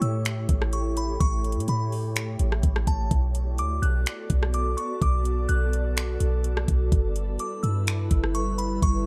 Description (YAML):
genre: hip hop, atmospheric cloud-rap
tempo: 126 BPM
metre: 4/4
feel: half-time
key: B minor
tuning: A4 = 440 Hz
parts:
  - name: delicate synth tine bell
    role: melody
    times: 0.0-9.1 s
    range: A5 to F#6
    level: -35 LUFS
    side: equal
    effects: chorus, phaser, digital delay
  - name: glassy FM pad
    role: sustained chords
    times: 0.0-9.1 s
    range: G3 to D5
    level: -34 LUFS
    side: equal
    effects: ensemble chorus, built-in reverb, sidechain pumping
  - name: clean 808-style bass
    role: bass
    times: 0.0-9.1 s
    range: G1 to A2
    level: -28 LUFS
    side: equal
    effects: none
  - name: smooth R&B drum kit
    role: drums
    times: 0.0-8.9 s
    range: finger snaps, hi-hat, kick drum, rim click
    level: -28 LUFS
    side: equal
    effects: overdrive
room: little or no reverb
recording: none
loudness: -25 LUFS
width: mono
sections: 0.0-9.1 A section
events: none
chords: 0.0 A7; 3.1 Bm7; 6.9 G69